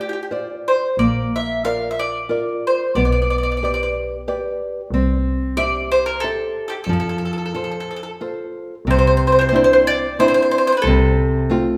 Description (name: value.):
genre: italian folk.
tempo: 91 BPM.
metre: 3/4.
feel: swing 55% on 8ths.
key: F major.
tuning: A4 = 439 Hz.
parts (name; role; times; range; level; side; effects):
bowl-back mandolin; melody; 0.0-11.8 s; G4 to F5; -21 LUFS; equal; none.
nylon-string guitar; accompaniment; 0.0-11.8 s; C3 to E5; -24 LUFS; equal; none.
clear double bass; bass; 1.0-11.8 s; Bb1 to F2; -25 LUFS; equal; none.
room: wet recital hall reverb, RT60 1.4 s.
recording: none.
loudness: -19 LUFS.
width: mono.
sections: 0.0-8.9 A section; 8.9-11.8 B section.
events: none.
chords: 0.0 Dm7; 1.0 Bb; 3.0 G/B; 4.9 C; 6.9 F; 8.9 Cadd9; 10.9 F/C.